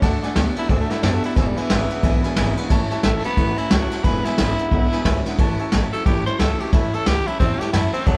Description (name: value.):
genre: rockabilly.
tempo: 179 BPM.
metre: 4/4.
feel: swing 62% on 8ths.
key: A major.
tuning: A4 = 440 Hz.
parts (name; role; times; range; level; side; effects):
bright upright piano; accompaniment; 0.0-8.2 s; B4 to B5; -33 LUFS; equal; none.
picked steel-string acoustic guitar; accompaniment; 0.0-8.2 s; E2 to F#4; -32 LUFS; equal; none.
electric guitar through a small old amp; riff; 0.0-8.2 s; E2 to B3; -30 LUFS; equal; none.
upright bass; bass; 0.0-8.2 s; E1 to F#2; -26 LUFS; equal; none.
vintage brush drum kit; drums; 0.0-8.2 s; kick drum, ride cymbal, snare drum; -23 LUFS; equal; none.
raspy tenor saxophone; melody; 0.6-8.2 s; E3 to C5; -27 LUFS; equal; none.
room: moderate stone room reverb, RT60 1.0 s.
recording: band playing live in one room, cassette tape.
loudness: -20 LUFS.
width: mono.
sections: 0.0-8.2 A section.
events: tenor saxophone solo 0.0-8.2.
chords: 0.0 D; 1.4 E7; 2.7 A; 4.0 E7; 5.4 A.